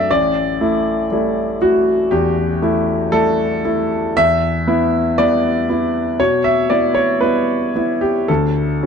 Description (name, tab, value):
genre	neoclassical minimalist piano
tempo	59 BPM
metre	4/4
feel	rubato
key	unclear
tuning	A4 = 441 Hz
part	clear grand piano	solo	0.0-8.9 s	A1 to E5	-14 LUFS	equal	none
room	little or no reverb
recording	dark, warm production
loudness	-14 LUFS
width	side -6 dB against mid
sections	0.0-8.9 A section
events	none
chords	0.1 A7sus4; 4.2 Em; 8.3 D5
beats	| 0.09 1.10 2.10 3.11 | 4.16 5.18 6.19 7.22 | 8.28